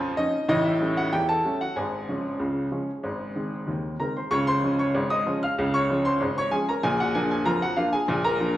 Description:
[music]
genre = ragtime piano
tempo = 95 BPM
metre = 2/4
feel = straight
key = Db major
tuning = A4 = 440 Hz
[part]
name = clear upright piano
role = solo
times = 0.0-8.6 s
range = Ab1 to F6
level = -23 LUFS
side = equal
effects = none
[sound]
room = wet recital hall reverb, RT60 1.7 s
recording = recorded in a church or concert hall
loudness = -23 LUFS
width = side -14 dB against mid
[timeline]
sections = 0.0-4.3 A section; 4.3-8.6 B section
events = none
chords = 0.5 A7; 1.8 Db/Ab; 3.0 Ab; 4.3 Db; 6.8 Bb7

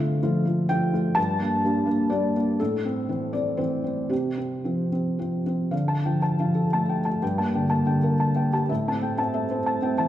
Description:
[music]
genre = neoclassical minimalist piano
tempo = 109-129 BPM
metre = 3/4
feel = rubato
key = D minor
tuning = A4 = 436 Hz
[part]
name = felt-muted upright piano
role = solo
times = 0.0-10.1 s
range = G2 to A5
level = -22 LUFS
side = equal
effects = none
[sound]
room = wet recital hall reverb, RT60 1.8 s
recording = recorded in a church or concert hall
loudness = -22 LUFS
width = side -12 dB against mid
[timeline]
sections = 0.0-5.7 A section; 5.7-10.1 B section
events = none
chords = 0.0 Dm; 1.2 Gmadd9; 2.6 Am; 4.1 Csus4; 5.7 Dm; 7.2 Gmadd9; 8.7 Am

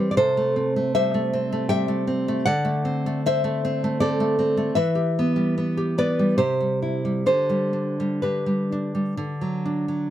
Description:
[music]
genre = romantic piece for solo classical guitar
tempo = 62-81 BPM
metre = 3/4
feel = rubato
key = unclear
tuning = A4 = 440 Hz
[part]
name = nylon-string guitar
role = solo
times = 0.0-10.1 s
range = C3 to G5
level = -20 LUFS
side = equal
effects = none
[sound]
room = light reverb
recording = dark, warm production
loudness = -20 LUFS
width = side -12 dB against mid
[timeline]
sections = 0.0-10.1 A section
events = none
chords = 0.2 Am7/C; 2.5 D7; 4.7 Em; 6.4 C; 7.3 G/D; 9.2 D

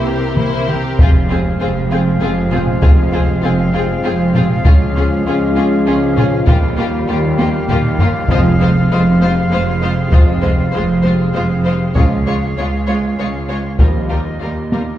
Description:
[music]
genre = cinematic, epic orchestral film score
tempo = 98 BPM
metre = 3/4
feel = straight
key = F minor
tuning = A4 = 440 Hz
[part]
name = warm symphonic violin section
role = melody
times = 0.0-14.8 s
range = G4 to Db5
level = -26 LUFS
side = left 4 dB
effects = none
[part]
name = rich symphonic violin section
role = second line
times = 0.0-14.8 s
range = E4 to G4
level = -26 LUFS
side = left 2 dB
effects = none
[part]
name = rich symphonic viola section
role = accompaniment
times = 0.0-14.8 s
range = G3 to Db4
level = -25 LUFS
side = right 1 dB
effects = none
[part]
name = bright trombone section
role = sustained chords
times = 0.0-14.0 s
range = E3 to Bb3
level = -23 LUFS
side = right 1 dB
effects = none
[part]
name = dark French horn section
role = sustained chords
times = 0.0-14.0 s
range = Bb3 to G4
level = -23 LUFS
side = left 5 dB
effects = none
[part]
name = mellow woodwind section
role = sustained chords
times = 0.0-15.0 s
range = Bb3 to F5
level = -25 LUFS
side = left 2 dB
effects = none
[part]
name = clear symphonic double bass section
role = bass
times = 0.0-15.0 s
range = F1 to Eb2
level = -20 LUFS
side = right 2 dB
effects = none
[part]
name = warm symphonic cello section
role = bass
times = 0.0-15.0 s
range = Db2 to C3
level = -19 LUFS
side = right 1 dB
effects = none
[part]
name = taiko ensemble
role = drums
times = 0.4-15.0 s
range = none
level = -14 LUFS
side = equal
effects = none
[part]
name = timpani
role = percussion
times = 8.3-9.2 s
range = F2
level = -22 LUFS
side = left 1 dB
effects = none
[sound]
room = wet scoring stage reverb, RT60 1.6 s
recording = heard from further back in the room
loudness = -12 LUFS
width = side -12 dB against mid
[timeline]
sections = 1.0-15.0 A section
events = drum fill 7.4-8.3, 14.7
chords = 0.0 C7; 1.0 Fm; 4.7 Db; 6.5 Ebadd9; 8.3 Fm; 12.0 Db; 13.8 Ebadd9

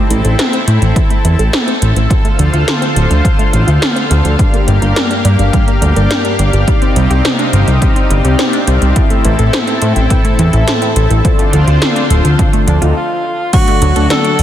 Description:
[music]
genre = synthwave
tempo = 105 BPM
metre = 4/4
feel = straight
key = unclear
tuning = A4 = 439 Hz
[part]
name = lush unison pad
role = sustained chords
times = 0.0-14.4 s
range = C3 to F5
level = -18 LUFS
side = equal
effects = chorus, sidechain pumping
[part]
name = analog pluck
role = arpeggios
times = 0.0-14.4 s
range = E3 to D5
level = -20 LUFS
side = right 2 dB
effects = chorus, phaser, ping-pong delay
[part]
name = fat analog bass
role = bass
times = 0.1-14.4 s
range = D1 to A2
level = -11 LUFS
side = equal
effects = sidechain pumping
[part]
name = 80s electronic pad drums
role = drums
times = 0.1-14.4 s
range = crash cymbal, hi-hat, snare drum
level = -18 LUFS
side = equal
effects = none
[part]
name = electronic kick drum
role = drums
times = 1.0-13.6 s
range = none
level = -13 LUFS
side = equal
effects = none
[part]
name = mellow synth brass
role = stabs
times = 4.4-14.4 s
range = G2 to G5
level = -18 LUFS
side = left 4 dB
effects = chorus, ping-pong delay
[part]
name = warm tenor saxophone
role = melody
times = 12.7-14.4 s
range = D4 to A4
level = -16 LUFS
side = right 1 dB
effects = tape echo
[part]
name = FM electric piano with soft pad layer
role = second line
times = 13.5-14.4 s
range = F#4 to A4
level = -23 LUFS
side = left 4 dB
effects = none
[sound]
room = light reverb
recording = dense, heavily limited modern master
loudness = -9 LUFS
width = side -11 dB against mid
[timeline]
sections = 0.0-13.5 A section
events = filter sweep on synth arpeggio sound 0.0-13.5; stop 13.0-13.5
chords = 0.0 Am; 2.1 Dm7; 4.4 Gm; 6.7 Cmadd9; 9.0 Am; 11.2 Dm7; 13.5 D

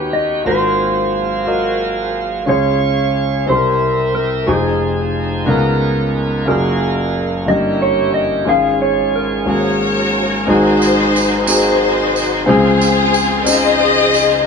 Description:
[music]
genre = slow gospel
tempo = 60 BPM (dotted quarters)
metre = 6/8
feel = straight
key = Db major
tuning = A4 = 436 Hz
[part]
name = mellow electric guitar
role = melody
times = 0.0-10.2 s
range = Ab4 to F5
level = -18 LUFS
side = right 1 dB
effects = none
[part]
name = warm concert grand piano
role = accompaniment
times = 0.0-14.5 s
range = F1 to C6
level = -16 LUFS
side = left 1 dB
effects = none
[part]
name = bright tonewheel organ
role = sustained chords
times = 0.0-14.4 s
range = Ab2 to Ab5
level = -24 LUFS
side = right 3 dB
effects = slow rotary speaker, overdrive
[part]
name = warm French horn section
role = sustained chords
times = 0.0-10.5 s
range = Gb3 to F5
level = -25 LUFS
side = right 3 dB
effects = none
[part]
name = warm symphonic string section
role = melody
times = 9.5-14.5 s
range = C4 to Eb5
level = -15 LUFS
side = left 3 dB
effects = none
[part]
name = tambourine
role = percussion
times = 10.8-14.4 s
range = none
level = -22 LUFS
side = right 4 dB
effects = none
[sound]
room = wet stone room reverb, RT60 1.3 s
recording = band playing live in one room, nothing above 10.4 kHz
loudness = -13 LUFS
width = side -5 dB against mid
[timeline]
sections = 0.0-10.5 A section; 10.5-14.5 B section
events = tonewheel organ fill 5.5-6.5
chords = 0.5 Ab13; 2.5 Dbmaj7; 3.5 C7; 4.5 Fm7; 5.5 Db13; 6.5 Gbmaj9; 7.5 Gdim7; 8.5 Db/Ab; 9.5 Ab9sus4; 10.5 Ab7; 12.5 Dbmaj7

